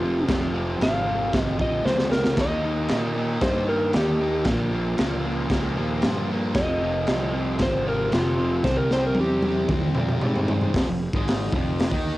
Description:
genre	garage rock duo or trio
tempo	115 BPM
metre	4/4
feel	straight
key	F minor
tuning	A4 = 440 Hz
part	electric slide guitar	melody	0.0-9.7 s	F4 to F5	-25 LUFS	equal	cassette tape
part	fuzz guitar	riff	0.0-12.2 s	F2 to Eb4	-27 LUFS	equal	distortion, cassette tape
part	fuzz fingered electric bass	bass	0.0-12.2 s	F1 to Bb2	-28 LUFS	equal	overdrive, tube saturation
part	crunchy breakbeat drum kit	drums	0.3-12.0 s	crash cymbal, hi-hat, kick drum, snare drum, toms	-25 LUFS	equal	cassette tape
room	light reverb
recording	home recording on cassette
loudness	-21 LUFS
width	side -17 dB against mid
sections	0.0-10.7 A section; 10.7-12.2 B section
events	drum fill 1.9-2.4, 8.6-10.7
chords	0.0 Fm; 2.4 Eb; 4.5 Bbm; 6.6 Fm; 8.6 C; 10.7 Fm

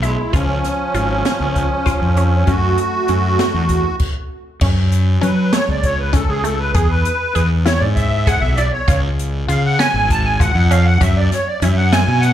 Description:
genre	progressive instrumental, band music in an uneven meter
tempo	197 BPM (eighths)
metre	7/8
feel	straight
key	F# minor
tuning	A4 = 441 Hz
part	musette accordion	melody	0.0-12.3 s	C#4 to A5	-19 LUFS	right 1 dB	slapback echo
part	breathy alto saxophone	second line	0.0-4.0 s	E#3 to A3	-26 LUFS	right 2 dB	slapback echo
part	resonant blip pluck	arpeggios	0.0-12.3 s	E#3 to G#4	-26 LUFS	equal	phaser, slapback echo
part	fuzz fingered electric bass	bass	0.0-12.3 s	G#1 to F#3	-16 LUFS	equal	overdrive
part	open jazz drum kit	drums	0.0-12.3 s	crash cymbal, hi-hat, kick drum, snare drum	-20 LUFS	equal	none
room	light reverb, small room reverb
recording	live gig heard through the venue's PA, club reverb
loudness	-14 LUFS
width	side -11 dB against mid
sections	0.0-4.6 A section; 4.6-12.3 B section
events	stop 4.0-4.6; accordion solo 4.6-12.3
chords	0.3 C#; 2.5 F#m7; 4.6 F#m; 6.7 E; 8.9 C#; 11.0 F#m

